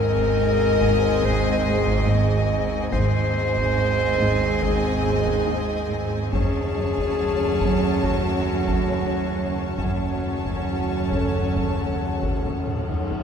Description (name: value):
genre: cinematic, suspense film score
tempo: 67-71 BPM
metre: 4/4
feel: straight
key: unclear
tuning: A4 = 439 Hz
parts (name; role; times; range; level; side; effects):
- rich studio violin section; melody; 0.0-13.1 s; Ab5 to A5; -35 LUFS; left 4 dB; none
- rich chamber violin section; second line; 0.0-13.1 s; Db5 to Eb5; -33 LUFS; left 1 dB; none
- warm clarinet; second line; 0.0-12.9 s; Db4 to Eb5; -26 LUFS; left 3 dB; none
- rich symphonic viola section; accompaniment; 0.0-13.1 s; C4 to Db4; -33 LUFS; right 2 dB; none
- bright trombone section; sustained chords; 0.0-13.0 s; Db3 to A3; -33 LUFS; right 3 dB; none
- ethereal airy pad; sustained chords; 0.0-13.2 s; Gb4 to Ab5; -34 LUFS; left 1 dB; ensemble chorus, built-in reverb
- mellow French horn section; sustained chords; 0.0-13.2 s; F3 to A4; -32 LUFS; right 1 dB; none
- rich symphonic cello section; riff; 0.0-13.2 s; Gb2 to Ab2; -31 LUFS; right 2 dB; none
- bright symphonic cello section; bass; 0.0-13.1 s; Gb2 to Ab2; -28 LUFS; right 3 dB; none
- rich symphonic double bass section; bass; 0.0-13.1 s; Gb1 to Ab1; -29 LUFS; right 3 dB; none
- sub bass with octave; drone; 0.0-13.2 s; Eb2; -31 LUFS; left 1 dB; none
- taiko ensemble; drums; 0.2-13.2 s; none; -31 LUFS; left 1 dB; none
room: wet scoring stage reverb, RT60 1.8 s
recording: minimal, uncompressed stereo recording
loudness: -20 LUFS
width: side -7 dB against mid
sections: 0.0-13.2 A section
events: drum fill 12.5-13.2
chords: 0.0 Ab; 6.3 Gbm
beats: 0.39 1.24 2.09 | 2.93 3.78 4.63 5.48 | 6.33 7.19 8.04 8.91 | 9.79 10.68 11.57 12.46